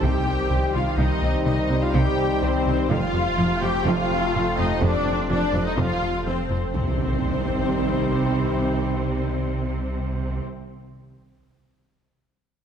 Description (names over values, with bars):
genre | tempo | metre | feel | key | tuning
cinematic, hybrid orchestral and electronic film score | 125 BPM | 4/4 | straight | C dorian | A4 = 440 Hz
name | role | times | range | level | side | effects
clear symphonic violin section | melody | 0.0-10.4 s | C5 to G5 | -32 LUFS | left 5 dB | none
rich symphonic violin section | second line | 0.0-10.4 s | C4 to G4 | -31 LUFS | left 3 dB | none
clear symphonic viola section | accompaniment | 0.0-10.4 s | C4 to G4 | -30 LUFS | right 2 dB | none
clear trombone section | sustained chords | 0.0-10.4 s | C3 to A3 | -31 LUFS | right 2 dB | none
mellow French horn section | sustained chords | 0.0-10.4 s | C4 to F4 | -32 LUFS | left 6 dB | none
warm analog pad | sustained chords | 0.0-10.4 s | Eb3 to C5 | -31 LUFS | left 1 dB | chorus
plucky analog bass | riff | 0.0-6.7 s | C2 to F3 | -28 LUFS | left 2 dB | none
clear symphonic double bass section | bass | 0.0-10.4 s | F1 to C2 | -30 LUFS | right 4 dB | none
rich symphonic cello section | bass | 0.0-10.4 s | F2 to C3 | -29 LUFS | right 3 dB | none
soft dub sub bass | bass | 0.0-10.4 s | F1 to C2 | -30 LUFS | equal | none
impact | sound effects | 0.0-1.0, 6.7-8.7 s | none | -32 LUFS | equal | none
room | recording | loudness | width
wet scoring stage reverb, RT60 1.9 s | none | -20 LUFS | side -8 dB against mid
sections
0.0-6.7 A section; 6.7-10.6 B section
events
impact 0.0-1.0, 6.7-8.7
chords
0.0 Cm; 2.9 F; 6.7 Cm